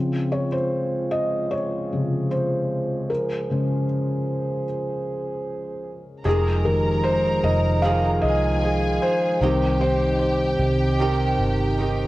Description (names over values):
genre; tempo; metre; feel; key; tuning
pop; 76 BPM; 4/4; straight; F minor; A4 = 440 Hz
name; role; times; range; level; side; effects
felt-muted upright piano; accompaniment; 0.0-12.1 s; C3 to F5; -23 LUFS; left 1 dB; none
mellow brass ensemble; sustained chords; 0.0-12.1 s; Db2 to C5; -28 LUFS; right 2 dB; none
rich studio violin section; second line; 6.2-12.1 s; G4 to Bb5; -29 LUFS; right 1 dB; none
flamenco guitar; arpeggios; 6.2-12.1 s; F2 to Ab4; -29 LUFS; right 3 dB; none
vintage muted fingered electric bass; bass; 6.3-12.1 s; F1 to C2; -24 LUFS; equal; none
room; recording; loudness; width
light reverb, studio ambience; worn, warbling old tape, cassette tape, warbly pitch drift; -20 LUFS; side -17 dB against mid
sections
0.0-6.3 A section; 6.3-12.1 B section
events
felt piano solo 0.0-6.3, 6.3-12.1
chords
0.0 Dbmaj7; 6.3 Fm7; 9.4 Cm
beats
0.73 1.52 2.31 | 3.10 3.89 4.68 5.47 | 6.25 7.04 7.83 8.62 | 9.41 10.20 10.99 11.78